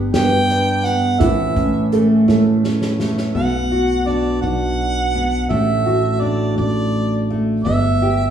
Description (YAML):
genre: acoustic folk duo or small band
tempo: 56 BPM (dotted quarters)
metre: 6/8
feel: straight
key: unclear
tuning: A4 = 440 Hz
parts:
  - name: fingerpicked steel-string acoustic guitar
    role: accompaniment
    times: 0.0-8.3 s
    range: G2 to G4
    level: -19 LUFS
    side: equal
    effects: none
  - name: felt-muted upright piano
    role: arpeggios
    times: 0.0-3.4 s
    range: E3 to A4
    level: -21 LUFS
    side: right 6 dB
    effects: none
  - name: fingered electric bass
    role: bass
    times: 0.0-8.3 s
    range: G1 to A2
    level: -21 LUFS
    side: equal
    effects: none
  - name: mellow harmonica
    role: melody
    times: 0.1-8.3 s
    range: D5 to G5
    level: -21 LUFS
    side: right 3 dB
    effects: none
  - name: unplugged drum kit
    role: drums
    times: 0.1-3.3 s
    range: hi-hat, kick drum, snare drum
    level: -23 LUFS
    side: equal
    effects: none
room: wet recital hall reverb, RT60 1.4 s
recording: recorded in a church or concert hall, small room ambience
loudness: -15 LUFS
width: side -9 dB against mid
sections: 0.0-3.4 A section; 3.4-8.3 B section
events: harmonica solo 0.0-3.4; drum fill 2.3-3.4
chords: 0.0 G; 1.2 A; 3.4 Bm; 5.5 Dadd9/A; 7.7 G